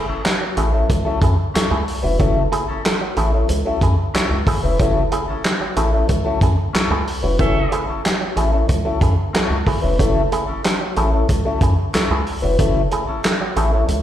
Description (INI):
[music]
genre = funk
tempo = 92 BPM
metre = 4/4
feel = straight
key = F# minor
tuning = A4 = 444 Hz
[part]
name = auto-wah clav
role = stabs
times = 0.0-14.0 s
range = F#3 to G#4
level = -25 LUFS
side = right 4 dB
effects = overdrive, plate reverb, slapback echo
[part]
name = mellow electric guitar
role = accompaniment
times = 0.1-13.9 s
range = C#4 to B4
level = -22 LUFS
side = left 4 dB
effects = wah, plate reverb, slapback echo
[part]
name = rubbery square bass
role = bass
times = 0.1-14.0 s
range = E#1 to F#2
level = -19 LUFS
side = equal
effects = none
[part]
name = warm soul drum kit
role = drums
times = 0.2-14.0 s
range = handclaps, hi-hat, kick drum, snare drum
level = -20 LUFS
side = equal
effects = slapback echo
[part]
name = warm horn section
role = second line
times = 7.4-7.8 s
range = C#4 to E5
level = -24 LUFS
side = right 1 dB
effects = plate reverb, slapback echo
[sound]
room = light reverb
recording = live gig heard through the venue's PA, recital hall reverb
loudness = -16 LUFS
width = side -11 dB against mid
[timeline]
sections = 0.0-14.0 A section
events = band accent 7.4-10.0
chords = 0.0 F#m7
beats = 0.25 0.90 1.55 | 2.20 2.85 3.50 4.15 | 4.80 5.45 6.10 6.75 | 7.40 8.05 8.70 9.35 | 10.00 10.64 11.29 11.94 | 12.59 13.24 13.89